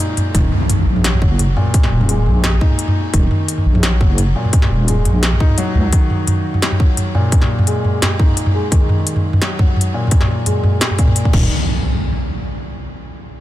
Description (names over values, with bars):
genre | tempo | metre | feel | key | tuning
half-time drum and bass | 172 BPM | 4/4 | half-time | unclear | A4 = 441 Hz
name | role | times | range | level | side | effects
felt-muted upright piano | arpeggios | 0.0-11.5 s | Bb2 to Eb4 | -21 LUFS | left 1 dB | low-pass filter, ping-pong delay
industrial drum kit | drums | 0.0-11.4 s | crash cymbal, hi-hat, snare drum, toms | -17 LUFS | equal | small room ambience
deep soft wobble bass | bass | 0.3-5.9, 11.3-11.5 s | Eb1 to Db2 | -15 LUFS | equal | chorus
electronic kick drum | drums | 0.3-11.4 s | none | -13 LUFS | equal | small room ambience
impact | sound effects | 0.3-1.7, 11.3-12.7 s | none | -22 LUFS | equal | none
room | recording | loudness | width
digital ambience | dense, heavily limited modern master | -13 LUFS | side -14 dB against mid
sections
0.3-11.5 A section; 11.5-12.9 B section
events
break 0.0-0.3; impact 0.3-1.7; filter sweep on felt piano 0.3-11.5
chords
0.3 Eb5; 11.3 N.C.